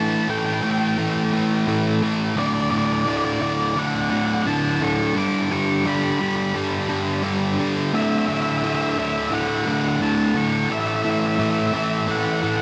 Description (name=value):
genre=rock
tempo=86 BPM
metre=4/4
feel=straight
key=D major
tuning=A4 = 436 Hz
part: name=octave-fuzz lead guitar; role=melody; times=0.0-12.6 s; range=D5 to D6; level=-28 LUFS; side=equal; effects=distortion, delay
part: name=overdriven electric guitar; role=riff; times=0.0-12.6 s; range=D2 to A3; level=-23 LUFS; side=equal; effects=none
room=wet huge ambient reverb, RT60 5.0 s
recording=dreamy mix soaked in reverb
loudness=-22 LUFS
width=mono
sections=0.0-12.6 A section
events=none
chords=0.0 A5; 2.4 D; 5.2 G; 7.9 D; 10.7 A5